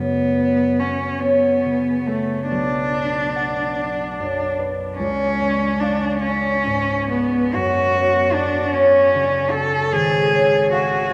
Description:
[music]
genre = classical, romantic duo for cello and harp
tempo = 44-51 BPM (dotted quarters)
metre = 6/8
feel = rubato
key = F# minor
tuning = A4 = 440 Hz
[part]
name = rich cello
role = melody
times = 0.0-11.1 s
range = A3 to A4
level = -22 LUFS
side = equal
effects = none
[part]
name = concert harp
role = accompaniment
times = 0.0-11.1 s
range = G#1 to F#5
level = -22 LUFS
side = equal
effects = none
[sound]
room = wet cathedral reverb, RT60 7.0 s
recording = in a vast, echoing space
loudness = -19 LUFS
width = mono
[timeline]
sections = 0.0-11.1 A section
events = none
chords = 0.0 F#m; 2.5 Bm; 5.0 C#7b9; 7.6 F#m; 9.9 C#/G#

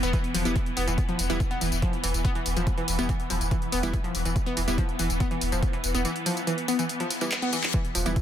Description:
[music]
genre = driving peak-time techno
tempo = 142 BPM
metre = 4/4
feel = straight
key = E phrygian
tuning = A4 = 441 Hz
[part]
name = analog pluck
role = riff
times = 0.0-8.1 s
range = E3 to B3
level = -30 LUFS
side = equal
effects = chorus, sidechain pumping, tape echo
[part]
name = warm sub bass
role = bass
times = 0.0-8.2 s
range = E1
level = -29 LUFS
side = equal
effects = overdrive, sidechain pumping, low-pass filter
[part]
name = swarming drone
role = drone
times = 0.0-8.2 s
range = E3 to B3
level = -32 LUFS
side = left 1 dB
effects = built-in reverb, phaser, sidechain pumping
[part]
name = punchy analog drum machine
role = drums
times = 0.0-8.2 s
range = handclaps, hi-hat, tambourine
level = -32 LUFS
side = left 1 dB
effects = overdrive, sidechain pumping on hats, sidechain pumping on cymbals, sidechain pumping on perc
[part]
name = electronic kick drum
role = drums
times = 0.1-8.2 s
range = none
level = -26 LUFS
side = equal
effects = overdrive
[part]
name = wavetable chord stab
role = stabs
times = 0.5-8.2 s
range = G3 to E4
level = -33 LUFS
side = right 2 dB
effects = sidechain pumping, ping-pong delay
[part]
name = reverse cymbal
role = sound effects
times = 7.1-7.7 s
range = none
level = -33 LUFS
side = left 7 dB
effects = none
[sound]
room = light reverb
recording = none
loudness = -24 LUFS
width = side -10 dB against mid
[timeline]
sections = 0.0-8.2 A section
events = reverse cymbal 7.1-7.7; drum fill 7.3-7.7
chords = 0.0 E5

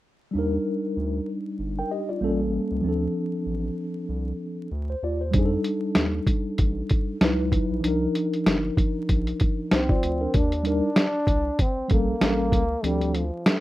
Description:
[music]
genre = hip hop, jazz-hop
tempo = 96 BPM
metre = 4/4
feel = swing 59% on 16ths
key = unclear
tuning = A4 = 439 Hz
[part]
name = mellow tine electric piano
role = accompaniment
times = 0.3-13.2 s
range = F3 to G5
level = -26 LUFS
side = equal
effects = medium stereo tremolo
[part]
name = round analog bass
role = bass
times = 0.3-13.3 s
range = G1 to F2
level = -29 LUFS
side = equal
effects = none
[part]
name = lo-fi sampler-style drum kit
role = drums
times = 5.3-13.6 s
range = hi-hat, kick drum, snare drum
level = -22 LUFS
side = equal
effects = none
[part]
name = breathy trombone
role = melody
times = 9.7-13.6 s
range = F3 to D4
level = -27 LUFS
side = equal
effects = none
[sound]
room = moderate studio reverb, RT60 0.5 s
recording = rough home demo mix, vinyl crackle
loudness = -22 LUFS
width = side -16 dB against mid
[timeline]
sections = 0.3-10.3 A section; 10.3-13.6 B section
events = none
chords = 0.3 Ebmaj7; 2.2 A7b9; 2.8 Dm7; 5.3 F13; 7.2 Dbm11; 7.8 Cm11; 10.3 Ebmaj7; 12.2 A7b9; 12.8 Dm7

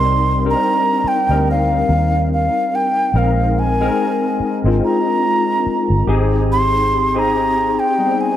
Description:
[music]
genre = lush 1970s-style soul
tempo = 72 BPM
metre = 4/4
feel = swing 58% on 16ths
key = C minor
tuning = A4 = 442 Hz
[part]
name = breathy mellow concert flute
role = melody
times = 0.0-8.4 s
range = F5 to C6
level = -18 LUFS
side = right 1 dB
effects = tape echo
[part]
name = barky tine electric piano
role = accompaniment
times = 0.0-8.4 s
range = G3 to Bb4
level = -18 LUFS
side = left 3 dB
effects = ensemble chorus
[part]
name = vintage muted fingered electric bass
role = bass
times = 0.0-7.8 s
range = G1 to Eb2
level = -18 LUFS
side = right 1 dB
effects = none
[sound]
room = light reverb, small room ambience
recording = none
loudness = -14 LUFS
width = side -11 dB against mid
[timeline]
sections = 0.0-8.4 A section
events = none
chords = 0.0 Cm7; 3.1 Bb9sus4; 6.1 Abmaj7

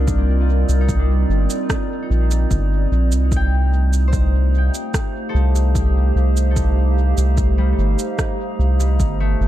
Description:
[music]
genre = ambient dub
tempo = 74 BPM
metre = 4/4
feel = straight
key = unclear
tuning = A4 = 443 Hz
[part]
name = warbly tape-like pad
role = sustained chords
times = 0.0-9.5 s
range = G3 to F5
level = -25 LUFS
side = right 2 dB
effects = chorus, built-in reverb
[part]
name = concert harp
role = arpeggios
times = 0.0-9.5 s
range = G3 to G5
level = -31 LUFS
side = left 6 dB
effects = tape echo
[part]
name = soft dub sub bass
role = bass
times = 0.0-9.5 s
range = G1 to C2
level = -16 LUFS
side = equal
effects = none
[part]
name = drifting glass-harmonics texture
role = texture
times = 0.0-9.5 s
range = Eb4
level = -31 LUFS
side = right 2 dB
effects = chorus, built-in reverb
[part]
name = electronic cabasa and rim click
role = drums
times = 0.1-9.2 s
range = none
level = -28 LUFS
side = right 3 dB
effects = dub echo
[part]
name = electronic kick drum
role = drums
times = 0.1-9.2 s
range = none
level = -22 LUFS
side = equal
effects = none
[sound]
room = little or no reverb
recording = echo-heavy mix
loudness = -15 LUFS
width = side -13 dB against mid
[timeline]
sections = 0.0-9.5 A section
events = none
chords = 0.0 Cm7; 3.3 F7/C

